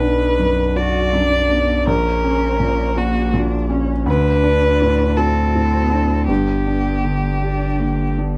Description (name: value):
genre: neoclassical piano and strings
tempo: 54 BPM (dotted quarters)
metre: 6/8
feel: rubato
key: B harmonic minor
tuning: A4 = 437 Hz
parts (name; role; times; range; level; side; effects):
- warm violin; melody; 0.0-8.1 s; F#4 to D5; -22 LUFS; equal; none
- felt-muted upright piano; accompaniment; 0.0-8.4 s; A#1 to G4; -23 LUFS; equal; none
- saturated sub bass; bass; 0.0-8.4 s; G1 to D2; -23 LUFS; equal; none
- warm cello; second line; 0.8-8.4 s; A#3 to F#4; -27 LUFS; equal; none
room: light reverb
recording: none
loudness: -18 LUFS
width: mono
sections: 0.0-8.4 A section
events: none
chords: 0.0 Bm; 1.9 F#/A#; 4.1 D7; 6.3 G